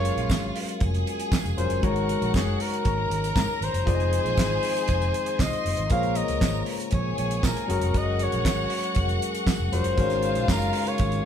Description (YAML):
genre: disco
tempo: 118 BPM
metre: 4/4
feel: straight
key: unclear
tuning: A4 = 440 Hz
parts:
  - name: clear flugelhorn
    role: melody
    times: 0.0-11.3 s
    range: Ab4 to F5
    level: -29 LUFS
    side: left 2 dB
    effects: none
  - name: rich studio string section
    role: second line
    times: 0.0-11.2 s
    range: F4 to C6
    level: -32 LUFS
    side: left 1 dB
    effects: none
  - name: barky tine electric piano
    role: accompaniment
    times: 0.0-11.3 s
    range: F3 to Eb5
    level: -31 LUFS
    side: left 4 dB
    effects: none
  - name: tonewheel organ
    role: sustained chords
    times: 0.0-11.3 s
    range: Db3 to Ab4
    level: -35 LUFS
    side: equal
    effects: overdrive, slow rotary speaker
  - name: fingered electric bass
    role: bass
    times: 0.0-11.2 s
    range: F1 to Bb2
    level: -28 LUFS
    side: right 1 dB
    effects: none
  - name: damped 70s drum kit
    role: drums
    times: 0.1-11.2 s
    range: handclaps, hi-hat, kick drum, snare drum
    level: -27 LUFS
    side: right 1 dB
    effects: none
  - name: tambourine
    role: percussion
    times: 0.3-10.6 s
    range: none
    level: -41 LUFS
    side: right 6 dB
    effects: none
room: moderate studio reverb, RT60 0.7 s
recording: band playing live in one room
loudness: -22 LUFS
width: side -8 dB against mid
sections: 0.0-11.3 A section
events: none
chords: 0.0 Gbmaj9; 1.8 Ab9sus4; 3.9 Fm7; 5.9 Bbm7; 7.7 Gbmaj9; 10.0 Ab9sus4